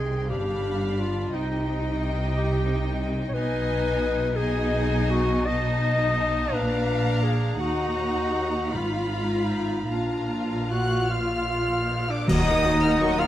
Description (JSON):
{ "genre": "classical, slow romantic movement for symphony orchestra", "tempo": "50-61 BPM (dotted quarters)", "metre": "6/8", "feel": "rubato", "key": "Eb minor from 3.3 s", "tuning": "A4 = 440 Hz", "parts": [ { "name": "clear studio violin section", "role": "melody", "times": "0.0-13.3 s", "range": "G5 to Gb6", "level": "-35 LUFS", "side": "left 2 dB", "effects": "none" }, { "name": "rich studio violin section", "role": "second line", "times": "0.0-13.3 s", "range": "Gb4 to G5", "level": "-34 LUFS", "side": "left 2 dB", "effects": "none" }, { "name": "warm clarinet", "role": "second line", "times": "0.0-13.3 s", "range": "D4 to D#5", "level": "-28 LUFS", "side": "left 2 dB", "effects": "none" }, { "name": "rich studio viola section", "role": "accompaniment", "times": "0.0-13.3 s", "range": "Gb3 to Gb4", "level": "-31 LUFS", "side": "equal", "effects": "none" }, { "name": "rich studio cello section", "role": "bass", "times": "0.0-13.2 s", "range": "Eb2 to C3", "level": "-30 LUFS", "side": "equal", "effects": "none" }, { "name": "rich studio double bass section", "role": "bass", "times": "0.0-13.2 s", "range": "G1 to Eb2", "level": "-29 LUFS", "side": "right 1 dB", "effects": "none" }, { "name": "cymbal swell, clash cymbals and concert bass drum", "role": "percussion", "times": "7.6-13.3 s", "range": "none", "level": "-34 LUFS", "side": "equal", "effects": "none" }, { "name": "mellow large flute ensemble", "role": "second line", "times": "10.7-13.3 s", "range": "D5 to Gb5", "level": "-32 LUFS", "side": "left 1 dB", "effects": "none" }, { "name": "warm oboe", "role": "second line", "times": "10.7-13.3 s", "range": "D5 to Gb5", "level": "-31 LUFS", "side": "right 1 dB", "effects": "none" }, { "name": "dark trumpet", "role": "stabs", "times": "10.7-13.3 s", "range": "D4 to Gb4", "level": "-28 LUFS", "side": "right 1 dB", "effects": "none" }, { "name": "timpani", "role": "percussion", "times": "12.3-13.3 s", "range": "Eb3", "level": "-27 LUFS", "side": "equal", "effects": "none" }, { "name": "bright trombone section", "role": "sustained chords", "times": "13.0-13.1 s", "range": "Eb3 to Gb3", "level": "-29 LUFS", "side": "right 1 dB", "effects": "none" }, { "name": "mellow French horn section", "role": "sustained chords", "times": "13.0-13.1 s", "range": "Bb3 to Gb4", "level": "-32 LUFS", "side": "left 2 dB", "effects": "none" } ], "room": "moderate scoring stage reverb, RT60 1.7 s", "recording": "vinyl crackle", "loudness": "-22 LUFS", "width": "side -12 dB against mid", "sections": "0.0-12.3 A section", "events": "band accent 12.3-13.0", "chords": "0.3 G7; 1.3 Cm; 3.3 Abm/Cb; 6.5 Bb; 7.6 Ebm; 8.7 Fdim/Ab; 9.9 Bb; 12.3 Ebm", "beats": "0.30 | 1.33 2.35 | 3.35 4.36 | 5.48 6.54 | 7.59 8.73 | 9.91 11.11 | 12.29" }